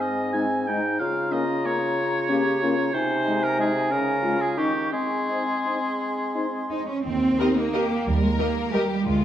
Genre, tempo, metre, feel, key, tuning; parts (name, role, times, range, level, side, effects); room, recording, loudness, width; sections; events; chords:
classical, orchestral ballroom waltz; 160-200 BPM; 3/4; rubato; Ab major; A4 = 440 Hz
clear clarinet; second line; 0.0-6.9 s; C4 to G4; -29 LUFS; left 2 dB
clear oboe; second line; 0.0-6.7 s; G4 to Ab5; -28 LUFS; right 1 dB
mellow silver concert flute; second line; 0.0-6.8 s; Ab5 to Db6; -30 LUFS; equal
warm bassoon; accompaniment; 0.0-6.8 s; Ab2 to Ab3; -29 LUFS; equal
clear French horn section; sustained chords; 0.3-8.9 s; Ab3 to Bb4; -30 LUFS; left 3 dB
rich studio cello section; bass; 6.7-9.2 s; G3 to Eb4; -23 LUFS; right 1 dB
rich studio double bass section; bass; 7.1-9.2 s; D2 to Eb2; -27 LUFS; right 3 dB
rich studio violin section; melody; 7.4-8.8 s; Eb5; -38 LUFS; left 5 dB
rich studio violin section; second line; 7.4-9.2 s; Eb4 to Bb4; -30 LUFS; left 3 dB
clear studio viola section; accompaniment; 7.4-8.8 s; G4 to Bb4; -30 LUFS; right 1 dB
moderate concert hall reverb, RT60 2.1 s; dark, warm production; -21 LUFS; side -10 dB against mid
0.0-7.1 A section; 7.1-9.2 B section
0.0 Ab; 1.0 Bbm/Db; 2.9 Ab/C; 3.9 Db; 4.6 Eb7; 4.9 Ab; 7.1 Eb